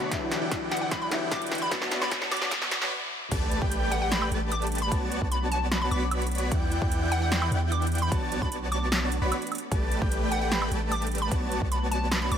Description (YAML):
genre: future bass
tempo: 150 BPM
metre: 4/4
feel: half-time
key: B minor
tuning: A4 = 442 Hz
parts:
  - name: warm grand piano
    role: accompaniment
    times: 0.0-3.3 s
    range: D3 to F#4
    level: -36 LUFS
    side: left 5 dB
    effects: sidechain pumping, ping-pong delay
  - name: ethereal airy pad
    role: sustained chords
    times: 0.0-12.4 s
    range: E2 to G4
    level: -39 LUFS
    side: right 2 dB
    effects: ensemble chorus, built-in reverb, sidechain pumping
  - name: supersaw chords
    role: riff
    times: 0.0-12.4 s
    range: E3 to B5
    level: -31 LUFS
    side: equal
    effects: sidechain pumping, low-pass filter
  - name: riser and sub drop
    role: sound effects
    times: 0.0-4.9 s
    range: none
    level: -35 LUFS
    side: equal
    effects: none
  - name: big-room dance drum kit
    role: drums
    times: 0.1-12.4 s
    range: crash cymbal, hi-hat, snare drum, woodblock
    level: -31 LUFS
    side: right 1 dB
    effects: high-pass filter on snare, high-pass filter on hats, high-pass filter on cymbals, high-pass filter on perc
  - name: electronic kick drum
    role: drums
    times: 0.1-11.7 s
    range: none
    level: -30 LUFS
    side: equal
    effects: none
  - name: hollow square pluck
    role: melody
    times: 0.7-12.4 s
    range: F#5 to D6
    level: -33 LUFS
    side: equal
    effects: chorus, sidechain pumping, ping-pong delay
  - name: airy dreamy lead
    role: arpeggios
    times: 3.3-12.4 s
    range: G5 to B5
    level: -36 LUFS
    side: equal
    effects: chorus, vintage 12-bit sampler grit, sidechain pumping
  - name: long sustained 808-style bass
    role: bass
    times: 3.3-12.4 s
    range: A1 to E2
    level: -30 LUFS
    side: equal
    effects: sidechain pumping
room: light reverb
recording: high-pass filter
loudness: -25 LUFS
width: side -8 dB against mid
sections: 0.0-3.3 A section; 3.3-12.4 B section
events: build-up 0.0-3.3; drum fill 0.0-2.9; riser 0.0-2.9; filter sweep 0.0-3.3; stop 2.9-3.3; drop 3.3-12.4; impact 3.3-4.9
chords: 0.1 Em9; 1.7 Bm7; 3.3 A9sus4; 4.9 Bm7; 6.5 Em9; 8.1 Bm7; 9.7 A9sus4; 11.3 Bm7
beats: | 0.12 0.52 0.92 1.32 | 1.72 2.12 2.52 2.92 | 3.32 3.72 4.12 4.52 | 4.92 5.32 5.72 6.12 | 6.52 6.92 7.32 7.72 | 8.12 8.52 8.92 9.32 | 9.72 10.12 10.52 10.92 | 11.32 11.72 12.12